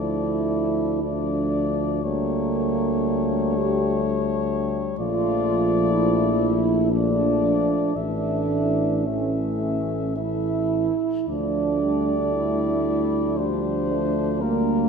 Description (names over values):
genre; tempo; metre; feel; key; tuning
classical, hymn-like piece for brass band; 53-65 BPM; 3/4; rubato; D minor; A4 = 435 Hz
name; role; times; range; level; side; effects
warm flugelhorn; melody; 0.0-14.9 s; Bb4 to E5; -29 LUFS; left 7 dB; none
mellow French horn section; second line; 0.0-14.9 s; Bb3 to G4; -24 LUFS; right 6 dB; none
warm euphonium; accompaniment; 0.0-14.9 s; G3 to Bb3; -29 LUFS; left 4 dB; none
warm trombone; accompaniment; 0.0-14.9 s; E3 to G3; -31 LUFS; equal; none
dark tuba; bass; 0.0-14.9 s; A1 to D2; -26 LUFS; left 2 dB; none
room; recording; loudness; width
wet concert hall reverb, RT60 1.9 s; minimal, uncompressed stereo recording; -20 LUFS; side -6 dB against mid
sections
0.0-14.9 A section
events
none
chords
0.0 Dm; 2.0 A7b9/D; 5.0 Bbmaj7; 8.0 A; 11.3 Dm